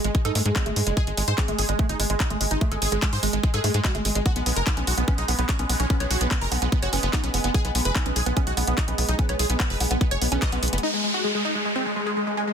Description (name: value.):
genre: psychedelic trance.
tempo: 146 BPM.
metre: 4/4.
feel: straight.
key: unclear.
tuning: A4 = 441 Hz.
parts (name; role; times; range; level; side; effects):
supersaw stab; melody; 0.0-12.5 s; G#3 to D#5; -28 LUFS; equal; phaser, sidechain pumping, dub echo.
bubbling stepped-filter texture; sustained chords; 0.0-12.5 s; G#3; -32 LUFS; equal; chorus, built-in reverb, sidechain pumping.
woody wave-folded pluck; riff; 0.0-10.8 s; G#3 to C#5; -32 LUFS; moving between left 5 dB and right 10 dB; chorus, auto-pan, sidechain pumping, digital delay.
tight sequencer bass; bass; 0.0-10.8 s; F#1 to G#2; -26 LUFS; equal; none.
garage drum kit; drums; 0.0-10.9 s; handclaps, hi-hat; -28 LUFS; equal; none.
electronic kick drum; drums; 0.1-10.5 s; none; -24 LUFS; equal; none.
downlifter; sound effects; 10.8-12.5 s; none; -26 LUFS; equal; none.
room: digital ambience.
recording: dense, heavily limited modern master.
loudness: -21 LUFS.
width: side -7 dB against mid.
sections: 0.0-10.8 A section; 10.8-12.5 B section.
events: band accent 10.4; drum fill 10.6.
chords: 0.0 F#madd9 (rootless); 4.3 B5; 10.8 N.C..